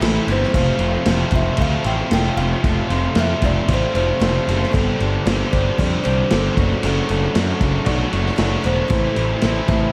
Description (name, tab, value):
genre	classic rock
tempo	115 BPM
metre	4/4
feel	straight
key	unclear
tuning	A4 = 437 Hz
part	clear upright piano	accompaniment	0.0-9.9 s	C4 to F5	-37 LUFS	equal	none
part	picked steel-string acoustic guitar	accompaniment	0.0-9.9 s	A2 to C5	-35 LUFS	equal	none
part	crunchy overdriven guitar	riff	0.0-9.9 s	F2 to G4	-28 LUFS	equal	none
part	overdriven electric guitar	riff	0.0-9.9 s	F2 to G4	-30 LUFS	equal	none
part	fuzz picked electric bass	bass	0.0-9.9 s	E1 to F#2	-23 LUFS	equal	overdrive
part	vintage drum kit	drums	0.0-9.8 s	crash cymbal, kick drum, snare drum	-24 LUFS	equal	none
part	kalimba	melody	0.3-9.9 s	G4 to G5	-27 LUFS	equal	none
room	little or no reverb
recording	none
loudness	-18 LUFS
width	mono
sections	0.0-9.9 A section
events	none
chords	0.0 Am; 0.6 F; 4.7 Gsus4; 6.6 D/F#; 8.9 Am